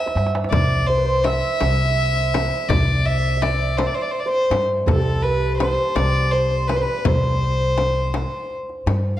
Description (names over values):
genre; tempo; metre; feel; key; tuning
Persian modal ensemble; 55 BPM (dotted quarters); 6/8; straight; C dastgah mahur; A4 = 437 Hz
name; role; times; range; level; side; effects
rich violin; melody; 0.0-9.2 s; A4 to E5; -22 LUFS; equal; none
santur; second line; 0.0-9.2 s; G4 to E5; -26 LUFS; right 2 dB; none
tombak; percussion; 0.1-9.0 s; none; -26 LUFS; right 1 dB; none
upright bass; bass; 0.2-9.2 s; C2 to G2; -21 LUFS; equal; none
frame drum; percussion; 0.5-9.0 s; none; -27 LUFS; left 5 dB; none
room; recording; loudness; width
moderate recital hall reverb, RT60 1.5 s; dark, warm production; -17 LUFS; side -13 dB against mid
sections
0.0-9.2 A section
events
drum fill 0.0-0.5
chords
none